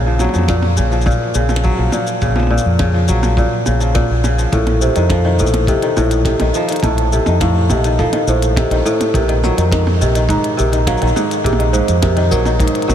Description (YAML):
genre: folktronica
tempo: 104 BPM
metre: 4/4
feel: straight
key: unclear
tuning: A4 = 440 Hz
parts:
  - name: kora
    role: arpeggios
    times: 0.0-12.9 s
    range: Ab2 to Bb3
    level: -17 LUFS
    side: left 1 dB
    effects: low-pass filter, ping-pong delay
  - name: deep dub fingered electric bass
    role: bass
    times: 0.0-12.9 s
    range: Bb1 to F2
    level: -16 LUFS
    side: equal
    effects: none
  - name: minimal click drum kit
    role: drums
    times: 0.2-12.9 s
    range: hi-hat, percussion blips, shaker, snare drum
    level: -24 LUFS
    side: right 1 dB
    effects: none
  - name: kick drum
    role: drums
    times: 0.5-12.7 s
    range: none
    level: -22 LUFS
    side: equal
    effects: none
  - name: celesta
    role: second line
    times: 4.5-12.9 s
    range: F4 to Bb5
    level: -20 LUFS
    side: right 2 dB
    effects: ping-pong delay
room: moderate huge ambient reverb, RT60 7.3 s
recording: dreamy mix soaked in reverb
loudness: -12 LUFS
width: side -10 dB against mid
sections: 0.0-12.9 A section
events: none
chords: 0.0 Gbmaj7/Bb; 4.5 F7/Bb; 9.1 Ab7/Bb